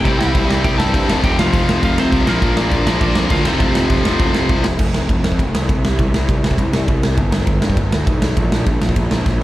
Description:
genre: punk rock.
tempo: 202 BPM.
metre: 4/4.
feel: straight.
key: unclear.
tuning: A4 = 439 Hz.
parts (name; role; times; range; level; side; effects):
lightly driven lead guitar; melody; 0.0-4.6 s; Bb3 to A5; -23 LUFS; right 2 dB; slapback echo.
overdriven electric guitar; riff; 0.0-4.6 s; F2 to G4; -24 LUFS; right 10 dB; slapback echo.
tight distorted guitar; riff; 0.0-4.6 s; F2 to C4; -20 LUFS; left 5 dB; distortion, slapback echo.
fuzz picked electric bass; bass; 0.0-9.4 s; F1 to G2; -18 LUFS; equal; overdrive.
big rock drum kit; drums; 0.1-9.3 s; crash cymbal, kick drum, ride cymbal, snare drum; -18 LUFS; equal; none.
room: small room ambience.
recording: live gig heard through the venue's PA, recital hall reverb.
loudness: -14 LUFS.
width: side -15 dB against mid.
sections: 0.0-4.8 A section; 4.8-9.4 B section.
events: drum fill 9.3.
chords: 0.0 C; 1.1 F; 2.3 Bb; 3.5 F; 4.8 F5; 5.8 N.C.; 7.2 G; 8.4 N.C..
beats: | 0.05 0.34 0.64 0.94 | 1.23 1.53 1.83 2.12 | 2.42 2.71 3.01 3.31 | 3.60 3.90 4.20 4.49 | 4.79 5.09 5.39 5.68 | 5.98 6.28 6.58 6.88 | 7.18 7.47 7.77 8.07 | 8.37 8.67 8.97 9.26.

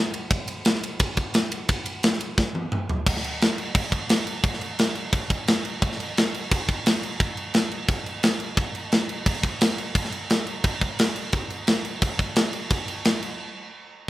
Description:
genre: metal.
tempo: 174 BPM.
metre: 4/4.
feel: straight.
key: none.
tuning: none.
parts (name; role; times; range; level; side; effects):
tight metal drum kit; drums; 0.1-13.3 s; crash cymbal, kick drum, ride cymbal, snare drum, toms; -22 LUFS; equal; none.
room: moderate studio ambience, RT60 0.5 s.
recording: rough home demo mix.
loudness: -22 LUFS.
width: side -16 dB against mid.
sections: 0.0-3.1 A section; 3.1-14.1 B section.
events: drum fill 2.4-3.1; break 13.4-14.1.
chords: none.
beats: | 0.31 0.66 1.00 1.34 | 1.69 2.03 2.38 2.72 | 3.06 3.41 3.75 4.10 | 4.44 4.78 5.13 5.47 | 5.82 6.16 6.51 6.85 | 7.20 7.54 7.88 8.23 | 8.57 8.92 9.26 9.61 | 9.95 10.30 10.64 10.98 | 11.33 11.67 12.02 12.36 | 12.71 13.05.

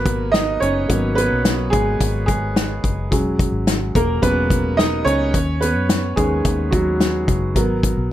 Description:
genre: piano-driven pop.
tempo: 108 BPM.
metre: 4/4.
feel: straight.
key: G# minor.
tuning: A4 = 440 Hz.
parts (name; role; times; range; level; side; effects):
clear upright piano; accompaniment; 0.0-8.1 s; D#3 to D#5; -19 LUFS; right 1 dB; plate reverb.
vintage muted fingered electric bass; bass; 0.0-8.1 s; E1 to F#2; -23 LUFS; left 1 dB; none.
natural country drum kit; drums; 0.1-8.0 s; hi-hat, kick drum, snare drum; -20 LUFS; left 1 dB; none.
room: light reverb.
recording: none.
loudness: -16 LUFS.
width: side -12 dB against mid.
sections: 0.0-8.1 A section.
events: upright piano solo 0.0-8.1.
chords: 0.0 G#m7; 3.1 E6; 5.3 Badd9/D#; 7.6 G#m7.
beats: 0.34 | 0.89 1.45 2.00 2.56 | 3.11 3.67 4.22 4.78 | 5.33 5.89 6.45 7.00 | 7.56 8.11.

